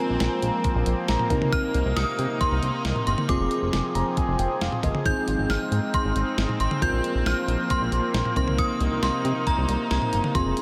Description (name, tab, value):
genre	synth-pop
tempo	136 BPM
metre	4/4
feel	straight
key	C minor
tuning	A4 = 444 Hz
part	synth chime	melody	0.0-10.6 s	Bb5 to G6	-31 LUFS	equal	ensemble chorus, tape echo
part	mellow FM electric piano	accompaniment	0.0-10.6 s	C4 to Bb5	-32 LUFS	equal	chorus
part	sweeping resonant pad	sustained chords	0.0-10.6 s	C3 to Ab4	-31 LUFS	equal	chorus
part	chorused synth bass	bass	0.1-10.5 s	F1 to C3	-28 LUFS	equal	none
part	clean 12-bit digital drum machine	drums	0.2-10.6 s	cowbell, hi-hat, kick drum, snare drum, toms	-31 LUFS	equal	none
room	wet huge ambient reverb, RT60 8.1 s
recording	dreamy mix soaked in reverb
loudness	-24 LUFS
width	mono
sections	0.0-10.6 A section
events	FM electric piano fill 0.9-1.5, 3.7-5.1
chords	0.0 Bbsus2; 1.3 Cm7; 3.3 Fm; 5.1 Ab; 6.8 Bbsus2; 8.4 Cm7